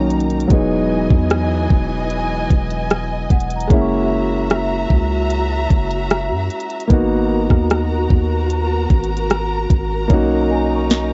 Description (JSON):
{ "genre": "contemporary R&B", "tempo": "75 BPM", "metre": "4/4", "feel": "straight", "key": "G# minor", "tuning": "A4 = 440 Hz", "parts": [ { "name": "warm concert grand piano", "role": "accompaniment", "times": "0.0-11.1 s", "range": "D#3 to F#4", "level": "-22 LUFS", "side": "equal", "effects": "none" }, { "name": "warm symphonic string section", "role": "sustained chords", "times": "0.0-11.1 s", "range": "E3 to A#5", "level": "-26 LUFS", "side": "equal", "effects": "sidechain pumping" }, { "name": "long sustained 808-style bass", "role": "bass", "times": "0.0-11.1 s", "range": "E1 to F#2", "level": "-24 LUFS", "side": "equal", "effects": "none" }, { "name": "large celesta", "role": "texture", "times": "0.0-11.1 s", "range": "C#5 to C#6", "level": "-33 LUFS", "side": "equal", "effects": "tape echo" }, { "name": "trap drum kit", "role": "drums", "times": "0.1-11.1 s", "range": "hi-hat, kick drum, rim click, snare drum", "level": "-17 LUFS", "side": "equal", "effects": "none" } ], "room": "little or no reverb", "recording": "worn, warbling old tape, cassette tape, warbly pitch drift, nothing above 7.9 kHz", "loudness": "-17 LUFS", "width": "mono", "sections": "0.0-11.1 A section", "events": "none", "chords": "0.0 Bmaj7; 0.5 Emaj7; 3.7 F#7; 6.9 G#m9; 10.1 Bmaj7" }